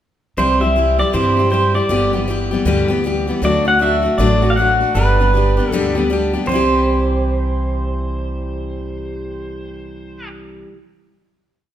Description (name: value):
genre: country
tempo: 158 BPM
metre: 4/4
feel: swing 62% on 8ths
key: C lydian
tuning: A4 = 440 Hz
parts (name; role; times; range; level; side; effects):
- pedal steel guitar; melody; 0.4-10.3 s; B4 to F#5; -18 LUFS; right 1 dB; none
- picked steel-string acoustic guitar; accompaniment; 0.4-10.8 s; G2 to G4; -19 LUFS; left 2 dB; none
- upright bass; bass; 0.4-10.6 s; G1 to G2; -20 LUFS; right 1 dB; none
room: moderate scoring stage reverb, RT60 1.4 s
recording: recorded in a church or concert hall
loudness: -14 LUFS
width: side -11 dB against mid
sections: 0.4-6.5 interlude; 6.5-9.5 final chord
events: none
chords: 0.4 C; 1.9 G6; 3.4 D; 4.9 G; 6.5 C